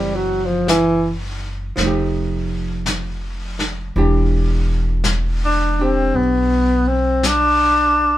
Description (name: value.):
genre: jazz ballad.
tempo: 55 BPM.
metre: 4/4.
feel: swing 67% on 8ths.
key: unclear.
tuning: A4 = 445 Hz.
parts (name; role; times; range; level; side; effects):
breathy tenor saxophone; melody; 0.0-8.2 s; E3 to D4; -15 LUFS; left 1 dB; none.
archtop guitar, miked and amplified; accompaniment; 0.0-8.2 s; E3 to G4; -25 LUFS; right 2 dB; none.
upright bass; bass; 0.0-8.2 s; E1 to B1; -21 LUFS; equal; none.
vintage brush drum kit; drums; 0.7-8.2 s; brushed snare drum, hi-hat, snare drum; -26 LUFS; left 2 dB; none.
room: light reverb.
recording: band playing live in one room.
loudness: -16 LUFS.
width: side -13 dB against mid.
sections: 0.0-8.2 A section.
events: tenor saxophone solo 0.0-8.2.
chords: 0.0 F#m7b5; 1.8 F9; 4.0 Em7.